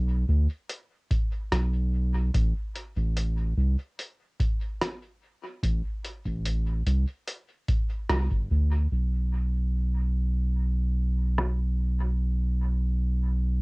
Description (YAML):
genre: ambient dub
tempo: 73 BPM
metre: 4/4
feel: straight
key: A minor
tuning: A4 = 441 Hz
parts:
  - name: soft dub sub bass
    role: bass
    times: 0.0-13.6 s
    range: G1 to D2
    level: -24 LUFS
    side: equal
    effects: none
  - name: lo-fi sampler-style drum kit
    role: drums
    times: 0.7-11.6 s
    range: hi-hat, rim click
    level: -31 LUFS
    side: equal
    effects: low-pass filter on hats, cassette tape, low-pass filter on snare, dub echo
  - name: electronic kick drum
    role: drums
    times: 1.1-8.5 s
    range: none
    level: -28 LUFS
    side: equal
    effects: cassette tape
room: little or no reverb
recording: home recording on cassette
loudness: -25 LUFS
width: side -33 dB against mid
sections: 0.0-8.9 A section; 8.9-13.6 B section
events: band accent 8.1-8.5; filter sweep on drum 8.9-13.6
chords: none